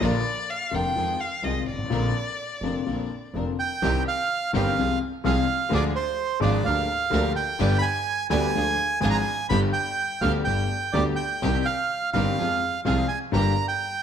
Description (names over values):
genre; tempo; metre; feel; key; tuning
tango; 126 BPM; 4/4; rubato; C minor from 3.8 s; A4 = 440 Hz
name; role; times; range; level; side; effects
warm violin; second line; 0.0-3.3 s; D5 to G5; -29 LUFS; left 2 dB; none
warm concert grand piano; accompaniment; 0.0-13.5 s; F1 to Ab4; -27 LUFS; left 5 dB; none
warm symphonic string section; stabs; 0.0-13.5 s; Bb3 to B4; -34 LUFS; right 2 dB; none
clear double bass; bass; 0.0-13.5 s; F1 to F2; -28 LUFS; right 2 dB; none
bandoneon; melody; 3.6-14.0 s; C5 to B5; -25 LUFS; right 5 dB; none
room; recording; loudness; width
wet large studio reverb, RT60 1.3 s; none; -22 LUFS; side -8 dB against mid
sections
0.0-3.8 A section; 3.8-14.0 B section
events
violin solo 0.0-3.8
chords
0.0 Bb; 1.0 Fm7; 1.9 Bbadd9; 3.8 Cm; 4.8 Fm/C; 5.7 Ddim; 6.7 Bb6/D; 7.6 G; 8.6 Ddim; 9.5 G; 11.4 Cm; 12.4 Fm; 13.3 Gm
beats
| 0.01 0.48 0.96 1.43 | 1.91 2.38 2.86 3.34 | 3.82 4.30 4.78 5.25 | 5.72 6.19 6.66 7.13 | 7.60 8.08 8.55 9.03 | 9.50 9.98 10.46 10.94 | 11.42 11.90 12.38 12.85 | 13.33 13.80